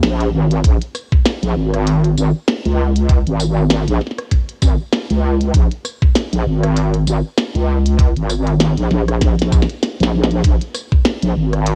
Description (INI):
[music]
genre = glitch hop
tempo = 98 BPM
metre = 4/4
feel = swing 57% on 16ths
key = Bb minor pentatonic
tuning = A4 = 440 Hz
[part]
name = wobble bass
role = bass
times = 0.0-11.8 s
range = Ab1 to Db2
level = -17 LUFS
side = equal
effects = chorus
[part]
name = glitchy drum kit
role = drums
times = 0.0-11.8 s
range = hi-hat, rim click, snare drum, tambourine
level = -22 LUFS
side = equal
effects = studio reverb, cassette tape
[part]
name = electronic kick drum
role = drums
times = 0.6-11.0 s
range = none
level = -15 LUFS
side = equal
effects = studio reverb, cassette tape
[sound]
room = little or no reverb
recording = home recording on cassette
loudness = -16 LUFS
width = mono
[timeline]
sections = 0.0-11.8 A section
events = drum fill 9.2-10.4; kick drops out 9.8-10.4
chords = none